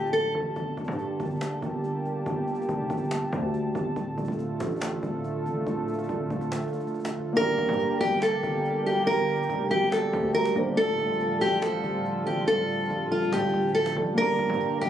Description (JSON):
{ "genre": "hip hop, trap", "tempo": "141 BPM", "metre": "4/4", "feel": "half-time", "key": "G minor", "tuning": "A4 = 439 Hz", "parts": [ { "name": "fingerpicked steel-string acoustic guitar", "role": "melody", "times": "0.0-0.3, 7.4-14.9 s", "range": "F4 to Bb4", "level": "-25 LUFS", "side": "equal", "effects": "ping-pong delay" }, { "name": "dark analog pad", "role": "sustained chords", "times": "0.0-14.9 s", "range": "D3 to A5", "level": "-31 LUFS", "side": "right 3 dB", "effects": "chorus" }, { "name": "distorted 808-style bass", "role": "bass", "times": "0.0-14.9 s", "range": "D1 to A2", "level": "-32 LUFS", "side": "equal", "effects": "distortion" }, { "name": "cajon", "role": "drums", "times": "0.1-14.9 s", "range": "none", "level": "-40 LUFS", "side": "left 1 dB", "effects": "none" }, { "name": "dark concert grand piano", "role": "accompaniment", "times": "7.3-14.9 s", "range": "A3 to C5", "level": "-34 LUFS", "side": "left 1 dB", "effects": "none" } ], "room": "light reverb", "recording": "recorded on a phone in the room, club reverb", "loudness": "-24 LUFS", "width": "side -10 dB against mid", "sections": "0.0-7.4 A section; 7.4-14.9 B section", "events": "break 0.6-7.4; kick muted 6.5-7.4", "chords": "0.0 Dm; 0.6 Gmadd9; 4.0 Dm; 7.4 Gmadd9; 10.8 Dm; 14.2 Gm", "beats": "0.14 | 0.56 0.99 1.41 1.84 | 2.26 2.69 3.11 3.54 | 3.96 4.39 4.82 5.24 | 5.67 6.09 6.52 6.94 | 7.37 7.79 8.22 8.64 | 9.07 9.50 9.92 10.35 | 10.77 11.20 11.62 12.05 | 12.47 12.90 13.33 13.75 | 14.18 14.60" }